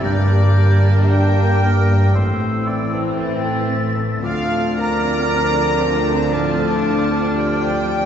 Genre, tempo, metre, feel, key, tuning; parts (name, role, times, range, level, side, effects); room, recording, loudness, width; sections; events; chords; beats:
cinematic; 58 BPM; 4/4; rubato; D minor; A4 = 439 Hz
rich symphonic violin section; melody; 0.0-8.1 s; C4 to D4; -27 LUFS; left 3 dB
bright large flute ensemble; second line; 0.0-8.1 s; E6 to A6; -28 LUFS; right 2 dB
clear oboe; second line; 0.0-8.1 s; Bb4 to E5; -29 LUFS; equal
mellow clarinet; second line; 0.0-8.1 s; D4 to Bb4; -26 LUFS; equal
warm symphonic violin section; second line; 0.0-8.1 s; D5 to Bb5; -24 LUFS; left 1 dB
clear concert grand piano; accompaniment; 0.0-8.1 s; D2 to D5; -23 LUFS; left 1 dB
dark symphonic viola section; accompaniment; 0.0-8.1 s; E3 to C4; -27 LUFS; right 1 dB
dark French horn section; sustained chords; 0.0-8.1 s; E3 to D4; -28 LUFS; left 2 dB
dark symphonic double bass section; bass; 0.0-8.1 s; G1 to D2; -22 LUFS; right 1 dB
warm symphonic cello section; bass; 0.0-8.1 s; G2 to D3; -20 LUFS; right 1 dB
wet scoring stage reverb, RT60 1.5 s; heard from further back in the room, nothing above 7.9 kHz; -15 LUFS; side -9 dB against mid
0.0-8.1 A section
0.0 Gm; 2.1 Am; 4.2 Dm
| 0.04 1.12 2.15 3.17 | 4.23 5.30 6.33 7.36